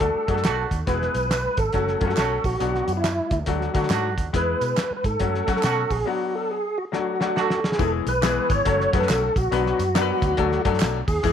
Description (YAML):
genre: uptempo 1960s-style soul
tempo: 139 BPM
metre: 4/4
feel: swing 63% on 8ths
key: unclear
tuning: A4 = 444 Hz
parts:
  - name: tonewheel organ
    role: melody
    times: 0.0-11.3 s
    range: E4 to C#5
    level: -24 LUFS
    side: right 1 dB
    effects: chorus vibrato, slow rotary speaker
  - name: clear baby grand piano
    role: accompaniment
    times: 0.0-11.3 s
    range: E3 to B4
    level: -26 LUFS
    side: left 10 dB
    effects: none
  - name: vintage muted fingered electric bass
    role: bass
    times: 0.0-11.3 s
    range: E1 to F#3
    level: -27 LUFS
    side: right 1 dB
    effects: none
  - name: cloth-damped thuddy drum kit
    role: drums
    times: 0.0-11.3 s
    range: hi-hat, kick drum, snare drum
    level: -26 LUFS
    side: right 1 dB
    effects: none
  - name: congas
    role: percussion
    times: 0.0-11.3 s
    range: none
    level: -40 LUFS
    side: right 14 dB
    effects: none
  - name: tambourine and handclaps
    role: percussion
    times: 0.0-11.3 s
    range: none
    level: -35 LUFS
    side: right 8 dB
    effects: none
  - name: dark horn section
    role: second line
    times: 0.3-7.7 s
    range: A3 to F#4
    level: -29 LUFS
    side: right 10 dB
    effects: none
room: light reverb, small room ambience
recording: 1960s-style stereo with parts hard left and right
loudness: -20 LUFS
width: side -8 dB against mid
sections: 0.0-7.8 A section; 7.8-11.3 B section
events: drum fill 6.9-7.8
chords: 0.0 D; 0.9 E; 1.7 F#m; 2.6 Bm; 3.5 D; 4.3 E; 5.2 F#m; 6.1 Bm; 6.9 D; 7.8 E; 8.7 F#m; 9.5 Bm; 10.4 D